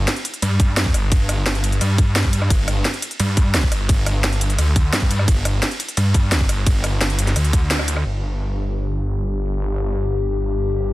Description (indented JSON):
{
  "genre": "dark technical drum and bass",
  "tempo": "173 BPM",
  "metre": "4/4",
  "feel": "straight",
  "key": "unclear",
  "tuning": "A4 = 440 Hz",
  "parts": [
    { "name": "snarling distorted saw bass", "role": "bass", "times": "0.0-10.9 s", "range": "G1 to G2", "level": "-19 LUFS", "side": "equal", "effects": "distortion" },
    { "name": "drum and bass drum kit", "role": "drums", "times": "0.1-8.0 s", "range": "hi-hat, ride cymbal, rim click, snare drum", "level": "-22 LUFS", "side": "equal", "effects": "none" },
    { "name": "electronic kick drum", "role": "drums", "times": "0.6-7.6 s", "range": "none", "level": "-17 LUFS", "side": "equal", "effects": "none" },
    { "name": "dark analog pad", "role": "sustained chords", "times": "8.1-10.9 s", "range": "G3 to G4", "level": "-26 LUFS", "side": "left 6 dB", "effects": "wide subtle chorus, sidechain pumping" }
  ],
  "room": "digital ambience",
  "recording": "dense, heavily limited modern master",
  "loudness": "-17 LUFS",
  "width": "side -18 dB against mid",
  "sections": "0.0-8.1 A section; 8.1-10.9 B section",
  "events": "drop 0.0-8.1; kick drops out 7.7-8.1; band accent 7.7",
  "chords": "0.0 G5"
}